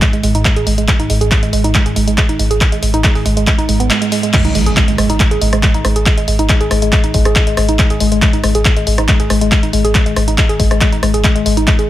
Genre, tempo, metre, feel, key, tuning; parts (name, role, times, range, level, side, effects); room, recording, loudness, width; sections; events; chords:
driving peak-time techno; 139 BPM; 4/4; straight; A4 = 445 Hz
woody wave-folded pluck; riff; 0.0-11.8 s; G#3 to G#4; -17 LUFS; right 1 dB; chorus, sidechain pumping, digital delay
deep dark ambient pad; drone; 0.0-4.4 s; G#2; -24 LUFS; left 1 dB
electronic kick drum; drums; 0.0-11.8 s; -14 LUFS; equal
punchy analog drum machine; drums; 0.0-11.9 s; crash cymbal, handclaps, hi-hat, rim click; -17 LUFS; equal; sidechain pumping on hats, sidechain pumping on cymbals
saturated sub bass; bass; 0.1-11.9 s; G#1; -17 LUFS; equal; tube saturation, sidechain pumping, low-pass filter
impact; sound effects; 4.3-6.1 s; -22 LUFS; equal
light reverb; -10 LUFS; side -13 dB against mid
0.0-4.3 A section; 4.3-11.9 B section
kick drops out 3.9-4.3; band accent 3.9; drop 4.3-11.9; impact 4.3-6.1
0.0 G#5